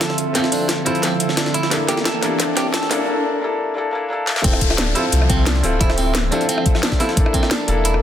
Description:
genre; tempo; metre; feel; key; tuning
liquid drum and bass; 176 BPM; 4/4; straight; D minor; A4 = 440 Hz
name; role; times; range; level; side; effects
felt-muted upright piano; accompaniment; 0.0-8.0 s; F3 to A4; -22 LUFS; left 1 dB; vintage 12-bit sampler grit, digital delay
airy breathy pad; sustained chords; 0.0-8.0 s; D3 to E5; -26 LUFS; right 2 dB; chorus, phaser
clean electric guitar; arpeggios; 0.0-7.9 s; C4 to A4; -25 LUFS; right 3 dB; low-pass filter, tape echo
garage drum kit; drums; 0.0-8.0 s; hi-hat, rim click, snare drum; -23 LUFS; equal; high-pass filter on hats, high-pass filter on snare
jungle sampler-style drum kit; drums; 0.0-7.9 s; hi-hat, snare drum; -25 LUFS; left 1 dB; high-pass filter on hats, high-pass filter on snare
riser and downlifter; sound effects; 0.6-7.2 s; none; -28 LUFS; left 2 dB; none
sub bass with octave; bass; 4.4-8.0 s; D1 to C2; -19 LUFS; equal; none
electronic kick drum; drums; 4.4-7.4 s; none; -18 LUFS; equal; none
room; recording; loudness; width
light reverb; dense, heavily limited modern master, high-pass filter; -16 LUFS; side -10 dB against mid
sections
0.0-4.4 A section; 4.4-8.0 B section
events
build-up 0.0-4.4; drum fill 0.0-3.1, 4.3; riser 0.6-3.1; drop 4.4-8.0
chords
0.0 Dm9; 1.7 Gm69/E; 4.4 Dm9; 7.2 C13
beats
0.01 | 0.35 0.69 1.03 1.38 | 1.72 2.06 2.40 2.74 | 3.08 3.42 3.76 4.10 | 4.44 4.78 5.12 5.47 | 5.81 6.15 6.49 6.83 | 7.17 7.51 7.85

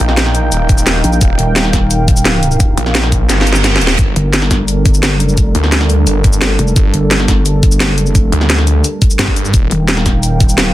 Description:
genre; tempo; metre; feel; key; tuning
dark technical drum and bass; 173 BPM; 4/4; straight; G minor; A4 = 440 Hz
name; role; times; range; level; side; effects
dark analog pad; sustained chords; 0.0-10.7 s; G3 to G5; -19 LUFS; right 1 dB; chorus, sidechain pumping
snarling distorted saw bass; bass; 0.0-9.7 s; Eb1 to G2; -13 LUFS; equal; distortion, sidechain pumping
drum and bass drum kit; drums; 0.0-10.6 s; hi-hat, shaker, snare drum; -15 LUFS; equal; none
electronic kick drum; drums; 0.7-10.5 s; none; -12 LUFS; equal; none
pulsing pluck wobble bass; bass; 1.0-10.7 s; Eb1 to Bb1; -14 LUFS; equal; chorus
reverse cymbal; sound effects; 3.4-4.0 s; none; -20 LUFS; right 5 dB; none
room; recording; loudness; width
little or no reverb; dense, heavily limited modern master; -9 LUFS; side -15 dB against mid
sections
0.0-10.7 A section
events
kick drops out 3.3-4.0; drum fill 3.3-4.0; reverse cymbal 3.4-4.0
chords
0.0 Eb; 4.0 Gm; 9.5 Eb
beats
0.17 0.52 0.87 | 1.21 1.56 1.91 2.25 | 2.60 2.95 3.29 3.64 | 3.99 4.33 4.68 5.03 | 5.38 5.72 6.07 6.42 | 6.76 7.11 7.46 7.80 | 8.15 8.50 8.84 9.19 | 9.54 9.88 10.23 10.58

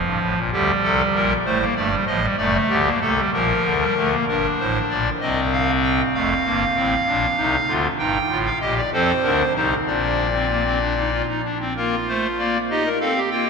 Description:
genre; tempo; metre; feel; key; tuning
classical, baroque-style 4-part fugue for pipe organ; 64 BPM (dotted quarters); 6/8; straight; G minor, Bb major from 8.0 s; A4 = 440 Hz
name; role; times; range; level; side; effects
pipe organ, clarinet reed; solo; 0.0-13.5 s; F1 to G5; -18 LUFS; equal; none
room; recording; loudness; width
wet cathedral reverb, RT60 4.7 s; minimal, uncompressed stereo recording; -18 LUFS; side -5 dB against mid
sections
0.0-4.3 A section; 4.3-11.8 B section; 11.8-13.5 C section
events
none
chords
0.0 Fadd9; 0.5 Gm; 1.4 Adim; 2.4 D/F#; 3.3 Gm/Bb; 4.3 Gm; 5.2 Cm; 6.1 F; 7.1 Bb; 8.0 Eb/G; 8.9 F7; 9.9 Bb; 12.7 Cm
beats
| 0.52 1.45 | 2.38 3.32 | 4.27 5.21 | 6.13 7.06 | 7.99 8.92 | 9.86 10.80 | 11.75 12.69

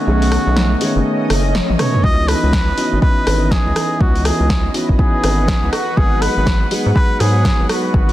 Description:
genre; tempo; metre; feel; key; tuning
deep house; 122 BPM; 4/4; swing 61% on 16ths; C# minor; A4 = 440 Hz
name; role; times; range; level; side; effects
trumpet with cup mute; melody; 0.0-8.1 s; F#4 to D#5; -22 LUFS; equal; tape echo
felt-muted upright piano; stabs; 0.0-8.1 s; D#3 to C#5; -22 LUFS; equal; sidechain pumping
granular cloud pad; texture; 0.0-8.1 s; E3 to G#5; -24 LUFS; equal; built-in reverb, sidechain pumping
round analog bass; bass; 0.1-8.1 s; F#1 to G#2; -17 LUFS; equal; sidechain pumping
deep house drum kit; drums; 0.2-8.1 s; hi-hat, rim click, snare drum, toms; -21 LUFS; equal; overdrive
swell; sound effects; 1.3-2.0 s; none; -28 LUFS; right 2 dB; none
electronic kick drum; drums; 2.0-8.1 s; none; -15 LUFS; equal; overdrive
room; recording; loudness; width
little or no reverb; dense, heavily limited modern master; -13 LUFS; side -14 dB against mid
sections
0.0-8.1 A section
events
break 0.1-2.0; swell 1.3-2.0; drum fill 1.7-2.0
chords
0.0 B13; 2.0 C#m11; 5.7 G#m7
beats
| 0.07 0.56 1.05 1.55 | 2.04 2.53 3.02 3.51 | 4.01 4.50 4.99 5.48 | 5.97 6.46 6.96 7.45 | 7.94

